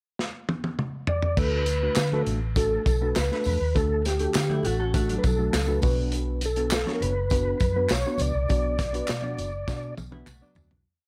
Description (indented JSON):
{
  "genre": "uptempo 1960s-style soul",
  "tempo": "101 BPM",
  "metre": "4/4",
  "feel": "straight",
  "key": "D major",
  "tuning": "A4 = 439 Hz",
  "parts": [
    { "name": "crunchy breakbeat drum kit", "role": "drums", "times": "0.2-10.9 s", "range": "crash cymbal, hi-hat, kick drum, snare drum, toms", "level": "-30 LUFS", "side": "equal", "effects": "none" },
    { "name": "mellow tonewheel organ", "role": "melody", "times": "1.1-9.9 s", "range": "F#4 to D5", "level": "-31 LUFS", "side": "equal", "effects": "chorus vibrato, fast rotary speaker" },
    { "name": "tine electric piano", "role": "accompaniment", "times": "1.4-10.7 s", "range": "B2 to D5", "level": "-33 LUFS", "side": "equal", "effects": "phaser" },
    { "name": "vintage muted fingered electric bass", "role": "bass", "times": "1.4-10.8 s", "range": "F#1 to D3", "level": "-30 LUFS", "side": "equal", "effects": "none" },
    { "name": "congas", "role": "percussion", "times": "1.4-10.7 s", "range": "none", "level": "-41 LUFS", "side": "equal", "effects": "none" },
    { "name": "tambourine and handclaps", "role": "percussion", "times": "1.4-10.7 s", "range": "none", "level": "-38 LUFS", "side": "equal", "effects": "none" },
    { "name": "clean electric guitar", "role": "riff", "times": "4.5-5.8, 10.1-10.8 s", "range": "F#3 to A4", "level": "-36 LUFS", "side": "equal", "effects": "subtle chorus" }
  ],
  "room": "little or no reverb",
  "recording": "none",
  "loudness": "-25 LUFS",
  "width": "mono",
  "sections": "0.0-1.4 pickup bar; 1.4-10.9 verse",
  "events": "drum fill 0.2-1.4, 9.7-10.9; fade-out 8.5-10.9",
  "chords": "0.0 N.C.; 1.4 D; 5.8 Bm",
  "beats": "0.19 0.78 | 1.37 1.97 2.56 3.16 | 3.75 4.34 4.94 5.53 | 6.13 6.72 7.32 7.91 | 8.50 9.09 9.68 10.28"
}